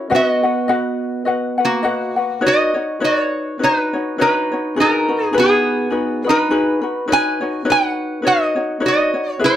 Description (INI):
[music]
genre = Hawaiian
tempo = 103 BPM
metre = 4/4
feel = swing 57% on 8ths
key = B major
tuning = A4 = 438 Hz
[part]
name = lap resonator guitar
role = melody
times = 0.0-9.6 s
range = A#3 to G#5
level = -16 LUFS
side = right 1 dB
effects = none
[part]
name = fingerpicked plugged-in steel-string acoustic guitar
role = second line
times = 0.0-1.8 s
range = B3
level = -24 LUFS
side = right 5 dB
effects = none
[part]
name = ukulele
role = accompaniment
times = 0.0-9.6 s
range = D#4 to F#5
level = -20 LUFS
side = left 3 dB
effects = none
[sound]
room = moderate studio reverb, RT60 0.5 s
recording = none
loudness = -15 LUFS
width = side -11 dB against mid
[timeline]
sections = 0.0-2.4 A section; 2.4-9.6 A section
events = none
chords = 0.1 B; 2.4 Badd9; 4.8 G#m7; 7.1 Badd9